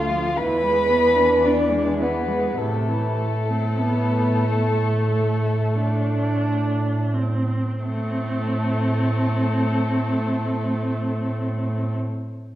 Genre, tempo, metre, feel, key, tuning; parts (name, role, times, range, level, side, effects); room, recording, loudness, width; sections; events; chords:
classical, slow romantic movement for string quartet; 42-57 BPM; 4/4; rubato; A minor; A4 = 439 Hz
muted violin; melody; 0.0-11.9 s; A4 to B5; -29 LUFS; left 5 dB
muted violin; second line; 0.0-11.9 s; A3 to B4; -25 LUFS; equal
muted viola; accompaniment; 0.0-11.9 s; C3 to D4; -26 LUFS; right 1 dB
muted cello; bass; 0.0-11.9 s; D2 to A2; -24 LUFS; right 1 dB
wet recital hall reverb, RT60 1.3 s; heard from further back in the room; -19 LUFS; side -13 dB against mid
0.0-7.9 A section; 7.9-12.6 B section
slowing down 0.0-7.9
0.4 E7; 2.6 Am